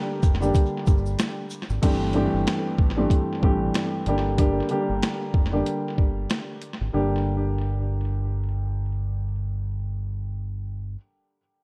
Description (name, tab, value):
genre	hip hop, boom-bap hip-hop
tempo	94 BPM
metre	4/4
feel	swing 59% on 16ths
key	G dorian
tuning	A4 = 440 Hz
part	dark upright piano	accompaniment	0.0-11.0 s	G2 to G4	-28 LUFS	equal	cassette tape, high-pass filter, low-pass filter, tape echo
part	deep dub fingered electric bass	bass	0.2-10.9 s	F1 to A1	-29 LUFS	equal	none
part	boom bap sampler-style drum kit	drums	0.2-6.8 s	crash cymbal, hi-hat, kick drum, shaker, snare drum	-26 LUFS	equal	tape echo
part	egg shaker	percussion	0.2-1.8 s	none	-52 LUFS	equal	tape echo
room	light reverb, digital ambience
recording	echo-heavy mix, cassette tape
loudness	-25 LUFS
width	mono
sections	0.0-1.8 A section; 1.8-6.9 B section; 6.9-9.5 C section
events	none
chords	0.0 Gm; 1.8 Am7/G; 4.1 Gm